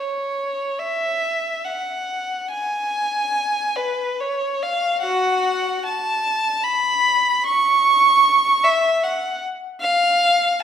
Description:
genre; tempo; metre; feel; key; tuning
classical, free, expressive piece for unaccompanied violin; 67-77 BPM; 3/4; rubato; F# minor; A4 = 440 Hz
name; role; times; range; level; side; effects
warm violin; solo; 0.0-10.6 s; F#4 to C#6; -17 LUFS; equal; none
room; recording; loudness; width
wet recital hall reverb, RT60 1.2 s; recorded in a church or concert hall; -17 LUFS; side -9 dB against mid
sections
0.0-10.6 A section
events
none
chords
none

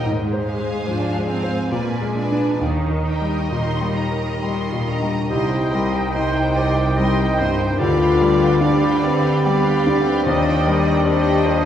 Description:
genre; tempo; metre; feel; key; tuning
classical, romantic movement for piano and orchestra; 66-76 BPM; 3/4; rubato; Eb major, C minor from 5.3 s; A4 = 441 Hz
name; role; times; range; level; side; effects
clear concert grand piano; melody; 0.0-11.7 s; C2 to C5; -21 LUFS; left 1 dB; none
warm symphonic violin section; melody; 0.0-11.7 s; Eb5 to C6; -32 LUFS; left 1 dB; none
warm symphonic violin section; second line; 0.0-11.7 s; Bb4 to F5; -30 LUFS; equal; none
warm symphonic viola section; accompaniment; 0.0-11.7 s; Ab3 to Eb5; -28 LUFS; right 3 dB; none
dark symphonic double bass section; bass; 0.0-11.7 s; Ab1 to Eb2; -27 LUFS; right 2 dB; none
clear symphonic cello section; bass; 0.1-11.7 s; Ab2 to Eb3; -28 LUFS; right 2 dB; none
warm French horn section; sustained chords; 4.9-11.7 s; B3 to F4; -22 LUFS; left 2 dB; none
clear oboe; second line; 5.3-11.5 s; C5 to Eb5; -27 LUFS; right 1 dB; none
silver concert flute; second line; 5.3-11.6 s; G5 to B5; -28 LUFS; right 1 dB; none
warm clarinet; second line; 5.3-11.6 s; G4 to C5; -28 LUFS; left 1 dB; none
warm bassoon; accompaniment; 5.3-11.7 s; D3 to G3; -26 LUFS; right 1 dB; none
room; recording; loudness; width
wet recital hall reverb, RT60 1.5 s; recorded in a church or concert hall; -17 LUFS; side -10 dB against mid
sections
0.0-5.3 A section; 5.3-11.7 B section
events
none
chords
0.0 Fm/Ab; 1.7 Bb7b9; 2.6 Eb; 5.3 Cm; 7.8 G7/D; 10.3 Cm/Eb

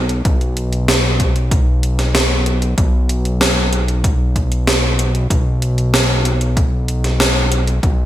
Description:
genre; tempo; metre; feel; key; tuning
synthwave; 95 BPM; 4/4; straight; unclear; A4 = 441 Hz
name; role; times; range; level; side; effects
fat analog bass; bass; 0.0-8.1 s; B1; -17 LUFS; equal; sidechain pumping
gated 80s digital drum machine; drums; 0.1-8.0 s; hi-hat, snare drum; -17 LUFS; equal; gated reverb, gated reverb snare, studio ambience
electronic kick drum; drums; 0.3-8.0 s; none; -16 LUFS; equal; studio ambience
room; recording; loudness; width
light reverb, digital ambience; bright 1980s-style digital production; -13 LUFS; side -13 dB against mid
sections
0.0-8.1 A section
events
none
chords
none

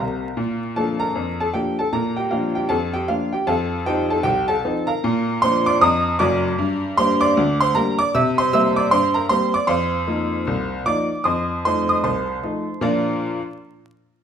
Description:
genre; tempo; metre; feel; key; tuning
ragtime piano; 77 BPM; 2/4; swing 60% on 16ths; Bb major; A4 = 435 Hz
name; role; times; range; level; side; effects
bright upright piano; solo; 0.0-13.4 s; Gb1 to E6; -18 LUFS; equal; none
room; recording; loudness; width
moderate large studio reverb, RT60 1.1 s; band playing live in one room, vinyl crackle; -18 LUFS; side -8 dB against mid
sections
0.4-12.8 A section; 12.8-14.2 B section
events
upright piano fill 0.0-0.4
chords
0.4 Bb; 3.5 F7; 5.0 Bb; 6.6 Gm; 8.1 C7; 9.7 F7sus4; 11.3 F7; 12.8 Bb

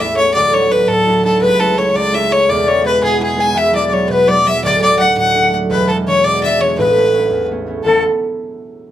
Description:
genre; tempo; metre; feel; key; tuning
celtic folk, Celtic jig; 112 BPM (dotted quarters); 6/8; straight; A major; A4 = 440 Hz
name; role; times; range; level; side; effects
clear fiddle; melody; 0.0-8.0 s; G#4 to G#5; -14 LUFS; left 1 dB; none
bright wooden flute; second line; 0.0-8.0 s; G#4 to G#5; -18 LUFS; left 3 dB; none
concert harp; accompaniment; 0.0-8.0 s; D1 to E4; -17 LUFS; right 3 dB; none
room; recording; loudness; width
moderate studio reverb, RT60 0.6 s; none; -11 LUFS; side -12 dB against mid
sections
0.0-7.8 A section; 7.8-8.9 B section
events
none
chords
0.4 Dadd9; 1.4 A/C#; 2.5 E; 3.6 Eadd9; 4.6 D; 5.7 E7; 6.8 Aadd9

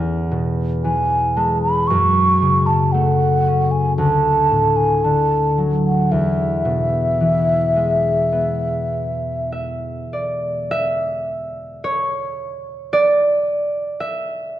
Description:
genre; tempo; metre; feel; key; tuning
celtic folk, Celtic slow air; 48-58 BPM; 4/4; rubato; E mixolydian; A4 = 440 Hz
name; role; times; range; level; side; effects
concert harp; accompaniment; 0.0-14.6 s; D2 to E5; -18 LUFS; equal; none
mellow hollow wooden flute; melody; 0.8-9.5 s; E5 to C#6; -18 LUFS; right 1 dB; none
room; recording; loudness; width
moderate recital hall reverb, RT60 1.7 s; dark, warm production; -16 LUFS; side -12 dB against mid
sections
0.0-10.7 A section; 10.7-14.6 B section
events
harp solo 10.7-14.6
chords
0.0 E; 1.9 F#m; 4.0 D; 6.1 E; 10.7 N.C.

